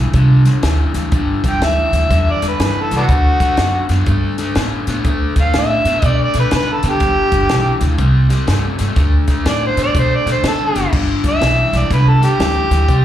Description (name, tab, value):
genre	electric blues shuffle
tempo	122 BPM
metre	4/4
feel	swing 64% on 8ths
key	G major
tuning	A4 = 440 Hz
part	overdriven semi-hollow guitar	riff	0.0-13.0 s	G2 to B3	-20 LUFS	left 3 dB	slapback echo
part	upright bass	bass	0.0-13.0 s	F#1 to D3	-16 LUFS	equal	none
part	compact cocktail drum kit	drums	0.1-13.0 s	crash cymbal, hi-hat, kick drum, snare drum	-20 LUFS	equal	none
part	overdriven harmonica	melody	1.5-13.0 s	B3 to G5	-17 LUFS	right 1 dB	slapback echo
room	light reverb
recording	live gig heard through the venue's PA, club reverb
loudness	-12 LUFS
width	side -11 dB against mid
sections	0.0-10.9 A section; 10.9-13.0 B section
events	harmonica solo 10.9-13.0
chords	0.0 G5; 3.1 D; 7.0 G; 8.0 C5; 9.0 D5; 10.9 G